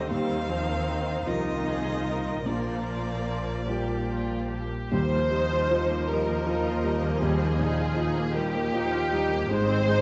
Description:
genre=cinematic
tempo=47-54 BPM (dotted quarters)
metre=6/8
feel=rubato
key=Eb major from 4.9 s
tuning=A4 = 440 Hz
part: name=clear violin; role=melody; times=0.0-4.5 s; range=D5 to F5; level=-38 LUFS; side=equal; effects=none
part: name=rich studio violin section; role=second line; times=0.0-10.0 s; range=Eb4 to C5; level=-33 LUFS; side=equal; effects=none
part: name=felt-muted upright piano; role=accompaniment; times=0.0-10.0 s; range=Bb1 to Eb5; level=-33 LUFS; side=equal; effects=none
part: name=rich studio viola section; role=accompaniment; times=0.0-10.0 s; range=Eb3 to F4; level=-34 LUFS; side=equal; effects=none
part: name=rich studio cello section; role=bass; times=0.0-10.0 s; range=Eb2 to Eb3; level=-37 LUFS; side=equal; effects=none
part: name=warm studio double bass section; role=bass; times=0.0-10.0 s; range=Ab1 to Eb2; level=-35 LUFS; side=equal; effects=none
part: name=rich studio violin section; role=melody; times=4.9-10.0 s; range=Eb5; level=-42 LUFS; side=equal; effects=none
part: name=timpani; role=percussion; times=4.9-6.0 s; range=Eb3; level=-36 LUFS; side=equal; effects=none
room=moderate scoring stage reverb, RT60 1.5 s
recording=vinyl crackle, nothing above 8.0 kHz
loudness=-27 LUFS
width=mono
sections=0.0-4.9 A section; 4.9-10.0 B section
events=none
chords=0.1 Ebsus2; 2.5 Bb6; 4.9 Ebadd9; 9.5 Ab

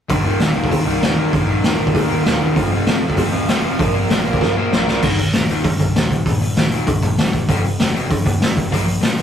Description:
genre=punk rock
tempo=195 BPM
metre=4/4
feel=straight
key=unclear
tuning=A4 = 440 Hz
part: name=overdriven semi-hollow guitar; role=riff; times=0.1-9.2 s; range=Eb2 to Bb3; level=-20 LUFS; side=left 2 dB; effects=none
part: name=raw garage guitar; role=riff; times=0.1-5.0 s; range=Eb2 to Bb3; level=-22 LUFS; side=right 2 dB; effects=overdrive
part: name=growling picked electric bass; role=bass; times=0.1-9.2 s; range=Eb1 to Bb2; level=-27 LUFS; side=right 1 dB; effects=overdrive
part: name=raw garage drum kit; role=drums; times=0.1-9.2 s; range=crash cymbal, hi-hat, kick drum, snare drum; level=-17 LUFS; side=equal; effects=none
room=light reverb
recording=rough rehearsal-room recording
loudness=-15 LUFS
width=side -9 dB against mid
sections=0.1-5.0 A section; 5.0-9.2 B section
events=drum fill 4.4-5.0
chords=0.1 Eb5; 2.6 F5; 3.8 Bb5; 5.0 Eb5; 7.5 F5; 8.7 Bb5

